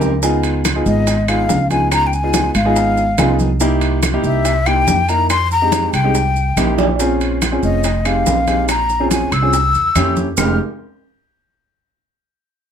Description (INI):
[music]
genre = Afro-Cuban jazz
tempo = 142 BPM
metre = 4/4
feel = straight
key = F minor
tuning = A4 = 440 Hz
[part]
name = warm grand piano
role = accompaniment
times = 0.0-10.6 s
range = Ab3 to Bb4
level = -19 LUFS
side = equal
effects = none
[part]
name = upright bass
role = bass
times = 0.0-10.6 s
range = F1 to F2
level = -18 LUFS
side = right 1 dB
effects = none
[part]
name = congas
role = percussion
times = 0.0-10.5 s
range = none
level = -24 LUFS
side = equal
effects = none
[part]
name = maracas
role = percussion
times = 0.0-10.5 s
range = none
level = -27 LUFS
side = right 7 dB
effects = none
[part]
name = timbales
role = percussion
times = 0.0-10.5 s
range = none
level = -24 LUFS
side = right 6 dB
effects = none
[part]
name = bongos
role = percussion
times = 0.2-10.5 s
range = none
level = -27 LUFS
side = left 4 dB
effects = none
[part]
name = claves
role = percussion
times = 0.6-10.5 s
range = none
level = -26 LUFS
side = left 5 dB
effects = none
[part]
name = breathy hollow jazz flute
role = melody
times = 0.9-10.6 s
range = Eb5 to F6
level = -17 LUFS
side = left 3 dB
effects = none
[sound]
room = moderate studio reverb, RT60 0.5 s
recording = none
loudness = -13 LUFS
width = side -8 dB against mid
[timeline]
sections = 0.0-7.0 A section; 7.0-10.4 B section; 10.4-12.1 C section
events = drum fill 0.0, 6.6-7.0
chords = 0.2 Db7; 3.6 C7#9; 5.3 Fm7; 6.1 C7#9; 7.0 Bbm9; 7.8 Fm7; 8.7 Bbm9; 9.5 C7b9; 10.4 Fm7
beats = | 0.23 0.65 1.07 1.49 | 1.92 2.34 2.76 3.19 | 3.61 4.03 4.46 4.88 | 5.30 5.72 6.15 6.57 | 6.99 7.42 7.84 8.26 | 8.69 9.11 9.54 9.96 | 10.38